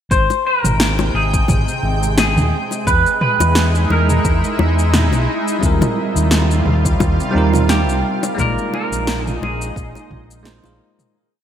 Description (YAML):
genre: sunset chillout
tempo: 87 BPM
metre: 4/4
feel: swing 55% on 16ths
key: Ab lydian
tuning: A4 = 440 Hz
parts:
  - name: clean electric guitar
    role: melody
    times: 0.1-10.8 s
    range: G4 to C5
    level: -20 LUFS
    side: equal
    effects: lush chorus, ping-pong delay
  - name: shimmering ambient pad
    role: sustained chords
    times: 0.7-11.1 s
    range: Bb2 to G5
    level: -22 LUFS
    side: right 1 dB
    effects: chorus, built-in reverb
  - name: overdriven fingered electric bass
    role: bass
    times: 0.1-10.8 s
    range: Ab1 to E2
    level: -17 LUFS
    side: equal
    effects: none
  - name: deep house drum kit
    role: drums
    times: 0.1-11.1 s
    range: shaker, snare drum, toms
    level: -20 LUFS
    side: equal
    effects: overdrive, gated reverb
  - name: electronic kick drum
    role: drums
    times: 0.1-10.3 s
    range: none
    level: -19 LUFS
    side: equal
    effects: overdrive
  - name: bongos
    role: percussion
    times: 0.3-10.8 s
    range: none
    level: -23 LUFS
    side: left 6 dB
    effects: none
  - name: bell-like tine electric piano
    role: accompaniment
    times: 5.6-11.2 s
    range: G3 to D5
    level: -22 LUFS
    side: moving between left 5 dB and right 6 dB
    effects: auto-pan
room: light reverb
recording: bright 1980s-style digital production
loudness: -14 LUFS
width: side -9 dB against mid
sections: 0.1-11.1 groove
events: fade-out 7.5-11.1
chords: 0.1 Abmaj7; 2.9 Emaj7; 5.6 Eb69; 8.4 Bb7sus4